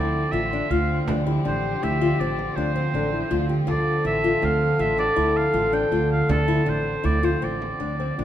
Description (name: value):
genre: contemporary instrumental, chamber music in an uneven meter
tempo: 160 BPM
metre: 7/4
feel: straight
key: D minor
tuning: A4 = 440 Hz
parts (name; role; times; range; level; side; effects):
- clear oboe; melody; 0.0-8.2 s; A4 to G5; -27 LUFS; right 2 dB; none
- mellow French horn; second line; 0.0-8.2 s; E4 to A4; -26 LUFS; left 2 dB; none
- rich studio string section; sustained chords; 0.0-8.2 s; D3 to C4; -32 LUFS; right 1 dB; none
- nylon-string guitar; arpeggios; 0.0-8.2 s; C4 to G4; -28 LUFS; left 6 dB; none
- upright bass; bass; 0.0-8.2 s; A1 to D2; -25 LUFS; right 2 dB; none
- frame drum; percussion; 0.1-8.2 s; none; -34 LUFS; right 3 dB; none
room: wet recital hall reverb, RT60 1.4 s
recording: minimal, uncompressed stereo recording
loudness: -20 LUFS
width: side -11 dB against mid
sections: 0.0-8.2 A section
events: none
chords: 0.0 Dm7